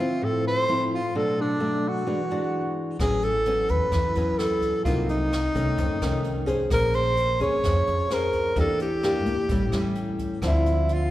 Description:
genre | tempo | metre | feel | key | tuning
bossa nova | 129 BPM | 4/4 | straight | unclear | A4 = 440 Hz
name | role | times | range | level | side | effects
breathy alto saxophone | melody | 0.0-11.1 s | D4 to Db5 | -25 LUFS | equal | none
nylon-string guitar | accompaniment | 0.0-11.1 s | F2 to C5 | -27 LUFS | left 1 dB | none
upright bass | bass | 3.0-11.1 s | A1 to Bb2 | -27 LUFS | equal | none
jazz brush drum kit | drums | 3.0-11.0 s | hi-hat, kick drum, rim click | -32 LUFS | equal | none
room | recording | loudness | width
moderate concert hall reverb, RT60 2.2 s | recorded in a church or concert hall | -22 LUFS | side -14 dB against mid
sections
0.0-11.1 A section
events
none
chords
0.0 Dm9; 1.1 Bm7; 2.1 E9; 3.0 A69; 4.9 Cm7b5; 5.8 F7b13; 6.7 Bbm9; 8.6 Em7b5; 9.5 A7; 10.4 Dm9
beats
0.21 0.68 | 1.14 1.60 2.07 2.53 | 3.00 3.46 3.92 4.39 | 4.85 5.32 5.78 6.24 | 6.71 7.17 7.63 8.10 | 8.56 9.03 9.49 9.95 | 10.42 10.88

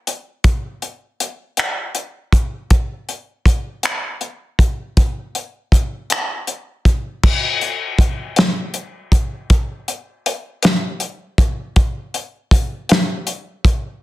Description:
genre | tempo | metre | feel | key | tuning
R&B | 53 BPM (dotted quarters) | 6/8 | straight | none | none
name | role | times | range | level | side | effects
warm soul drum kit | drums | 0.1-13.8 s | crash cymbal, finger snaps, hi-hat, kick drum, snare drum | -15 LUFS | equal | soft clipping on snare
room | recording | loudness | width
light reverb | dense, heavily limited modern master | -17 LUFS | side -17 dB against mid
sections
0.0-7.2 A section; 7.2-14.0 B section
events
break 0.0-0.4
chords
none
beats
| 0.44 1.57 | 2.71 3.84 | 4.97 6.10 | 7.23 8.37 | 9.50 10.63 | 11.76 12.89

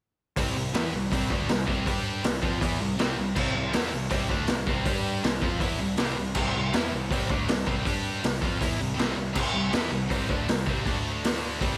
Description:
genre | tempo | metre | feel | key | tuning
punk rock | 160 BPM | 4/4 | straight | C major | A4 = 438 Hz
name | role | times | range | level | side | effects
fuzz guitar | riff | 0.4-11.8 s | C3 to G4 | -38 LUFS | equal | none
sludgy distorted guitar | riff | 0.4-11.8 s | C3 to G4 | -35 LUFS | equal | overdrive
tight distorted guitar | riff | 0.4-11.8 s | C3 to G4 | -35 LUFS | equal | distortion, slapback echo
fuzz picked electric bass | bass | 0.4-11.8 s | C2 to G2 | -37 LUFS | equal | overdrive
raw garage drum kit | drums | 0.4-11.7 s | crash cymbal, hi-hat, kick drum, snare drum | -30 LUFS | equal | none
room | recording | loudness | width
light reverb, small room ambience | none | -27 LUFS | mono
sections
0.4-11.8 A section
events
none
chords
0.4 C; 1.9 G5; 2.2 C; 4.9 G5; 5.2 C; 7.9 G5; 8.2 C; 10.9 D5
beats
| 0.37 0.74 1.11 1.49 | 1.86 2.24 2.61 2.99 | 3.36 3.74 4.11 4.49 | 4.86 5.24 5.61 5.99 | 6.36 6.73 7.11 7.48 | 7.86 8.23 8.61 8.98 | 9.36 9.73 10.11 10.48 | 10.86 11.24 11.61

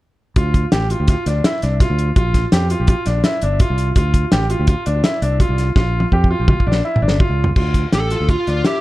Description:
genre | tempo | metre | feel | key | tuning
progressive instrumental, band music in an uneven meter | 167 BPM | 5/4 | straight | D minor | A4 = 440 Hz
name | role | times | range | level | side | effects
bright concert grand piano | arpeggios | 0.4-8.8 s | D4 to G4 | -21 LUFS | equal | analog delay
fingered electric bass | bass | 0.4-8.6 s | G1 to F2 | -18 LUFS | equal | none
warm soul drum kit | drums | 0.4-8.7 s | crash cymbal, hi-hat, kick drum, snare drum, toms | -16 LUFS | equal | none
dark smooth lead guitar | melody | 7.9-8.8 s | F4 to A4 | -20 LUFS | left 1 dB | overdrive, analog delay
room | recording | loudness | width
light reverb | dark, warm production | -14 LUFS | side -17 dB against mid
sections
0.4-7.6 A section; 7.6-8.8 B section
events
drum fill 5.8-7.6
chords
0.4 Dm; 2.2 Bb5; 4.0 Dm7; 5.8 Bb5; 7.6 Dm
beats
| 0.37 0.73 1.09 1.45 1.80 | 2.16 2.52 2.88 3.24 3.60 | 3.96 4.32 4.68 5.04 5.40 | 5.76 6.12 6.48 6.84 7.21 | 7.57 7.93 8.29 8.65

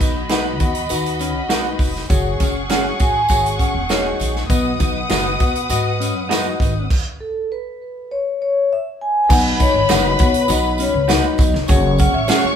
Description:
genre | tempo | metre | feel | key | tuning
uptempo 1960s-style soul | 100 BPM | 4/4 | straight | B major | A4 = 441 Hz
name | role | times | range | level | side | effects
warm studio violin section | second line | 0.0-12.6 s | F#4 to D#6 | -24 LUFS | left 1 dB | none
barky tine electric piano | accompaniment | 0.0-12.6 s | B2 to D#5 | -26 LUFS | left 2 dB | none
mellow electric guitar | riff | 0.0-12.5 s | B3 to F#4 | -25 LUFS | left 6 dB | none
upright bass | bass | 0.0-12.5 s | E1 to B2 | -23 LUFS | equal | none
natural country drum kit | drums | 0.0-12.4 s | crash cymbal, hi-hat, kick drum, snare drum | -19 LUFS | right 1 dB | none
tambourine | percussion | 0.0-12.4 s | none | -32 LUFS | right 6 dB | none
vibraphone with soft mallets | melody | 0.3-12.6 s | A4 to G#5 | -20 LUFS | left 1 dB | tape echo
electric guitar through a small old amp | stabs | 0.3-12.4 s | C#4 to F#5 | -23 LUFS | right 4 dB | none
room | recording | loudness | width
moderate large studio reverb, RT60 1.1 s | band playing live in one room | -15 LUFS | side -8 dB against mid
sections
0.0-9.3 A section; 9.3-12.6 B section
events
stop 6.9-9.3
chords
0.0 B; 2.1 F#sus2; 4.5 B; 6.9 N.C.; 9.3 B; 11.7 F#sus2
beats
0.30 0.90 1.50 | 2.10 2.70 3.30 3.90 | 4.50 5.10 5.70 6.30 | 6.90 7.50 8.10 8.70 | 9.30 9.90 10.50 11.10 | 11.69 12.29

